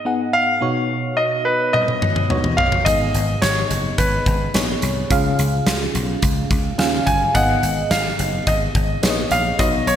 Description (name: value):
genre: 1980s-style pop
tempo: 107 BPM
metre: 4/4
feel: straight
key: G# dorian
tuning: A4 = 439 Hz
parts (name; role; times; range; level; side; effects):
- FM electric piano with auto-pan; accompaniment; 0.0-10.0 s; G#2 to F#5; -23 LUFS; equal; phaser
- clear concert grand piano; melody; 0.3-10.0 s; B4 to G#5; -20 LUFS; equal; none
- huge arena drum kit; drums; 1.7-10.0 s; hi-hat, kick drum, snare drum, toms; -21 LUFS; equal; gated reverb
- dry thumbed slap bass; bass; 2.9-10.0 s; F#1 to D#2; -23 LUFS; equal; none
room: wet lush hall reverb, RT60 2.4 s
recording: bright 1980s-style digital production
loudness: -16 LUFS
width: side -9 dB against mid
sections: 0.0-10.0 A section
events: drum fill 1.7-2.9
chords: 0.0 G#m; 0.6 Badd9; 2.9 G#m; 5.1 C#; 7.3 G#m